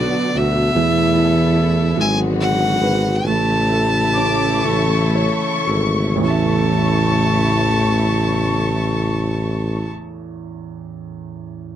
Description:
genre	pop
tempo	35-50 BPM (dotted quarters)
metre	6/8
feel	straight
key	A major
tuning	A4 = 441 Hz
part	clear violin	melody	0.0-9.9 s	D5 to A5	-22 LUFS	left 1 dB	none
part	warm baby grand piano	accompaniment	0.0-11.8 s	A1 to E5	-22 LUFS	right 6 dB	none
part	rich studio string section	sustained chords	0.0-9.9 s	B2 to A4	-24 LUFS	left 2 dB	none
part	mellow tuba	bass	0.0-9.9 s	G#1 to E2	-19 LUFS	left 1 dB	none
part	warm symphonic violin section	second line	4.2-9.9 s	C#6 to D6	-25 LUFS	left 4 dB	none
room	little or no reverb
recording	dry, close 1970s-style studio recording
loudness	-15 LUFS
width	side -10 dB against mid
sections	0.0-6.2 A section; 6.2-9.6 B section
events	slowing down 0.8-6.2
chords	0.0 Bm; 0.8 Esus4; 2.0 G#m7b5; 3.3 A

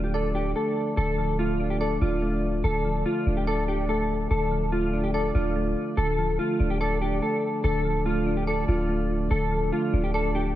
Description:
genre	hip hop, trap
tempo	144 BPM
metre	4/4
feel	half-time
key	D minor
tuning	A4 = 438 Hz
part	mellow electric guitar	melody	0.0-10.5 s	F4 to A4	-27 LUFS	equal	ensemble chorus, tape echo
part	soft electric-piano-like synth keys	accompaniment	0.0-10.6 s	D3 to D5	-28 LUFS	equal	chorus, tremolo
part	clean 808-style bass	bass	0.0-10.6 s	D1	-28 LUFS	equal	none
room	moderate plate reverb, RT60 2.5 s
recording	dreamy mix soaked in reverb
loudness	-23 LUFS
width	side -13 dB against mid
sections	0.0-6.0 A section; 6.0-10.6 B section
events	none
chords	0.0 Dm

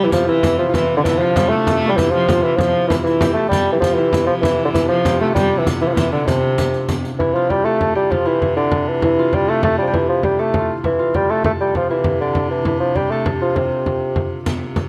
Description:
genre	medieval dance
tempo	131 BPM (dotted quarters)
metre	6/8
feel	straight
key	C major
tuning	A4 = 440 Hz
part	mellow bassoon	melody	0.0-14.3 s	C3 to A3	-20 LUFS	equal	none
part	clear viola da gamba	second line	0.0-6.8 s	C3 to A3	-26 LUFS	equal	none
part	concert harp	second line	0.0-14.9 s	C4 to A4	-25 LUFS	equal	none
part	rich viola da gamba	drone	0.0-14.9 s	C3	-29 LUFS	equal	none
part	frame drum	percussion	0.1-14.9 s	none	-25 LUFS	equal	none
part	riq	percussion	0.1-7.1, 14.5-14.8 s	none	-30 LUFS	equal	none
room	light reverb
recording	close, detailed microphones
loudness	-17 LUFS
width	mono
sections	0.0-7.2 A section; 7.2-14.5 B section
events	speeding up 0.0-14.9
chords	none

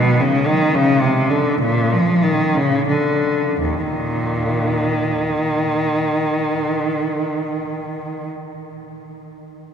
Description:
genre	classical, baroque-style suite movement for unaccompanied cello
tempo	80-114 BPM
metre	3/4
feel	rubato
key	unclear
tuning	A4 = 440 Hz
part	rich cello	solo	0.0-8.3 s	Eb2 to F3	-17 LUFS	equal	none
room	wet cathedral reverb, RT60 6.5 s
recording	minimal, uncompressed stereo recording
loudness	-16 LUFS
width	side -7 dB against mid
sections	0.0-3.6 A section; 3.6-7.8 B section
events	slowing down 0.0-3.6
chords	none

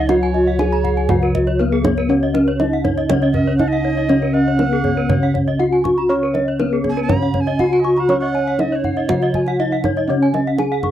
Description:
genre	Balinese gamelan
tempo	120 BPM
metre	4/4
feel	straight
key	Db slendro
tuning	A4 = 439 Hz
part	gamelan-type bronze metallophone	melody	0.0-10.9 s	Cb4-45c to Db5	-19 LUFS	equal	none
part	mellow reedy alto recorder	second line	0.0-9.7 s	Db5 to Cb6-40c	-27 LUFS	right 6 dB	none
part	gamelan-type bronze metallophone	accompaniment	0.0-10.9 s	Db3 to Db4	-25 LUFS	left 2 dB	none
part	gamelan-type bronze metallophone	arpeggios	0.0-10.8 s	Ab4+25c to Cb6-45c	-26 LUFS	right 7 dB	none
part	gamelan-type bossed gongs	bass	0.0-10.9 s	Db2 to Db5	-21 LUFS	equal	none
part	gamelan-type bronze metallophone	arpeggios	0.1-10.9 s	Cb5-45c to Db6	-24 LUFS	left 8 dB	none
part	kendang	percussion	0.1-10.9 s	none	-23 LUFS	right 2 dB	none
room	light reverb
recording	dry, close 1970s-style studio recording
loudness	-15 LUFS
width	side -11 dB against mid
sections	0.0-10.9 A section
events	none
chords	none

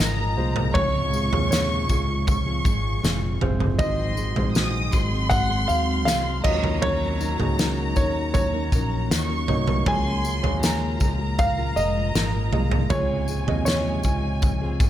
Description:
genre	pop ballad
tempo	79 BPM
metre	4/4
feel	straight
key	unclear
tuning	A4 = 438 Hz
part	warm concert grand piano	melody	0.0-14.9 s	Db5 to Ab5	-28 LUFS	equal	none
part	warm symphonic violin section	second line	0.0-14.9 s	Ab5 to Eb6	-30 LUFS	equal	tape echo
part	dark grand piano	accompaniment	0.0-14.9 s	Ab2 to Eb5	-32 LUFS	right 2 dB	none
part	ethereal airy pad	sustained chords	0.0-14.9 s	Bb2 to Gb4	-33 LUFS	equal	ensemble chorus, built-in reverb
part	fingerpicked plugged-in steel-string acoustic guitar	arpeggios	0.0-14.9 s	Ab2 to Bb4	-34 LUFS	left 3 dB	none
part	mellow fretless electric bass	bass	0.0-14.9 s	F1 to Eb2	-26 LUFS	equal	wide subtle chorus
part	loose indie drum kit	drums	0.0-14.9 s	crash cymbal, kick drum, snare drum, toms	-24 LUFS	equal	none
part	tambourine	percussion	0.0-14.9 s	none	-36 LUFS	left 6 dB	none
room	light reverb, small room ambience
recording	none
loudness	-20 LUFS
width	side -12 dB against mid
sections	0.0-14.9 A section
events	none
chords	0.0 Bbm7; 0.8 Dbmaj7; 3.8 Ab7; 6.5 Ebm7; 9.9 Bbm7/Db; 12.9 Dbmaj7

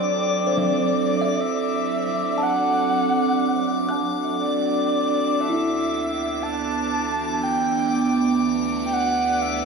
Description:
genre	ambient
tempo	60 BPM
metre	4/4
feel	straight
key	D mixolydian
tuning	A4 = 440 Hz
part	breathy flute-like synth lead	melody	0.0-9.7 s	D5 to A5	-24 LUFS	equal	chorus, diffuse ambient delay
part	evolving wavetable pad	sustained chords	0.0-9.7 s	D2 to D5	-23 LUFS	right 4 dB	phaser, built-in reverb
part	kalimba	arpeggios	0.0-9.6 s	F#3 to F#6	-30 LUFS	equal	diffuse ambient delay
part	drifting glass-harmonics texture	texture	0.0-9.7 s	D6	-29 LUFS	left 6 dB	chorus, built-in reverb
room	wet concert hall reverb, RT60 2.0 s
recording	studio reverb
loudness	-20 LUFS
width	side -4 dB against mid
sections	0.0-9.7 A section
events	none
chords	0.0 D7; 5.4 Em7/D

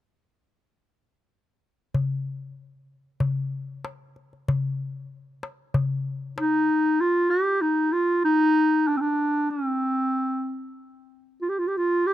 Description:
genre	Turkish makam ensemble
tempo	95 BPM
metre	4/4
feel	straight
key	unclear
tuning	A4 = 441 Hz
part	darbuka	percussion	1.9-6.9 s	none	-26 LUFS	left 2 dB	none
part	clear clarinet	melody	6.4-12.1 s	C4 to G4	-21 LUFS	equal	none
room	little or no reverb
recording	dry, close 1970s-style studio recording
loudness	-22 LUFS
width	side -13 dB against mid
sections	1.9-7.0 A section; 7.0-12.1 B section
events	none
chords	none

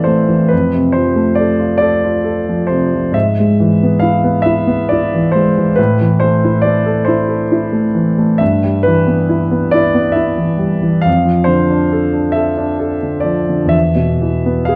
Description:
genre	classical, romantic nocturne for solo piano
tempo	45 BPM (dotted quarters)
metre	12/8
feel	rubato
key	unclear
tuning	A4 = 440 Hz
part	warm concert grand piano	solo	0.0-14.8 s	E2 to F5	-14 LUFS	equal	none
room	moderate concert hall reverb, RT60 2.2 s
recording	dark, warm production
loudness	-14 LUFS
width	mono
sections	0.0-14.8 A section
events	none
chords	0.0 Am; 0.5 F; 3.1 E/G#; 5.8 A5; 8.4 Em/G; 11.1 Dm/F; 13.7 E5

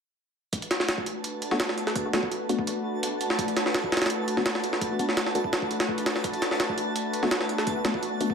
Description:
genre	drum and bass, jungle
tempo	168 BPM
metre	4/4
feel	straight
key	B minor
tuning	A4 = 439 Hz
part	warbly tape-like pad	sustained chords	0.7-8.3 s	A3 to B4	-30 LUFS	left 1 dB	chorus, built-in reverb
part	jungle sampler-style drum kit	drums	0.5-8.3 s	hi-hat, kick drum, snare drum	-27 LUFS	equal	high-pass filter on hats, high-pass filter on kick, high-pass filter on snare, high-pass filter on room
part	twinkling granular texture	texture	1.0-8.3 s	A5	-35 LUFS	right 3 dB	built-in reverb
part	filtered dub chord stab	stabs	1.5-8.3 s	A3 to F#4	-31 LUFS	left 2 dB	chorus, dub echo
room	moderate plate reverb, RT60 2.1 s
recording	none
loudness	-24 LUFS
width	side -6 dB against mid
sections	0.5-8.3 A section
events	none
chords	0.5 Bm7

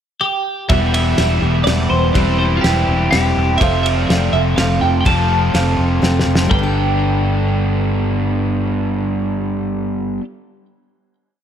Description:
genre	folk rock and heartland rock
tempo	124 BPM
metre	3/4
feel	straight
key	G mixolydian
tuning	A4 = 438 Hz
part	twelve-string electric guitar	melody	0.2-10.2 s	F4 to A5	-20 LUFS	right 2 dB	phaser, digital delay
part	picked steel-string acoustic guitar	accompaniment	0.7-10.3 s	E2 to A4	-23 LUFS	left 5 dB	none
part	overdriven electric guitar	riff	0.7-10.2 s	E2 to G4	-20 LUFS	right 2 dB	none
part	fingered electric bass	bass	0.7-10.2 s	E1 to G1	-18 LUFS	equal	none
part	cloth-damped thuddy drum kit	drums	0.7-6.6 s	kick drum, ride cymbal, snare drum, toms	-20 LUFS	equal	none
part	warm upright piano	accompaniment	3.6-10.2 s	A4 to G5	-30 LUFS	right 3 dB	none
room	light reverb, small room ambience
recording	none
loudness	-14 LUFS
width	side -9 dB against mid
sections	0.0-0.7 pickup bar; 0.7-6.5 pre-chorus; 6.5-9.4 final chord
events	drum fill 6.0-6.5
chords	0.0 N.C.; 0.7 Em; 2.2 C/E; 3.6 F; 6.5 Gadd9

